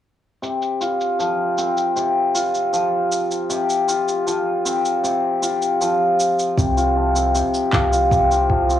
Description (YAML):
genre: folktronica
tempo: 78 BPM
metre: 4/4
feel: straight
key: unclear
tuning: A4 = 443 Hz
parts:
  - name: cimbalom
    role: arpeggios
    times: 0.4-8.8 s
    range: C3 to F4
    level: -18 LUFS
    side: left 1 dB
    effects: low-pass filter, cassette tape, tape echo
  - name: electronic shaker and handclaps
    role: drums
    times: 0.4-8.8 s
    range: none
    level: -27 LUFS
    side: right 1 dB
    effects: low-pass filter on perc, cassette tape, low-pass filter on snare
  - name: round analog bass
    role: bass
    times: 6.6-8.8 s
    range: C2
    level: -22 LUFS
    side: equal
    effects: none
  - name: electronic kick drum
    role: drums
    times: 6.6-8.7 s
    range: none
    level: -21 LUFS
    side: equal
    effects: cassette tape
room: moderate studio reverb, RT60 0.6 s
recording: home recording on cassette, small room ambience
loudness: -17 LUFS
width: side -11 dB against mid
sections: 0.4-6.6 A section; 6.6-8.8 B section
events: filter sweep on hammered dulcimer 6.6-8.8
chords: 0.4 Csus4